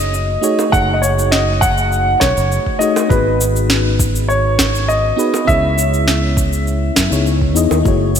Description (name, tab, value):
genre	sunset chillout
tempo	101 BPM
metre	4/4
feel	straight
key	F# dorian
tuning	A4 = 440 Hz
part	dark baby grand piano	melody	0.0-7.2 s	B4 to F#5	-18 LUFS	equal	digital delay
part	mellow FM electric piano	accompaniment	0.0-8.2 s	A3 to D#5	-19 LUFS	moving between left 9 dB and right 5 dB	chorus, auto-pan, ping-pong delay
part	fingered electric bass	bass	0.0-8.2 s	F#1 to F#2	-17 LUFS	right 1 dB	none
part	electronic cabasa and snare drum	drums	0.1-8.2 s	none	-20 LUFS	equal	overdrive
part	bongos	percussion	0.6-7.8 s	none	-28 LUFS	right 4 dB	none
part	electronic kick drum	drums	0.7-8.0 s	none	-19 LUFS	right 1 dB	overdrive
room	moderate lush hall reverb, RT60 2.5 s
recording	bright 1980s-style digital production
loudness	-12 LUFS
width	side -8 dB against mid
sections	0.0-7.9 A section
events	none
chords	0.0 F#m69; 3.1 G#m7; 5.5 C#m9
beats	0.13 | 0.73 1.32 1.92 2.51 | 3.10 3.70 4.29 4.89 | 5.48 6.08 6.67 7.26 | 7.86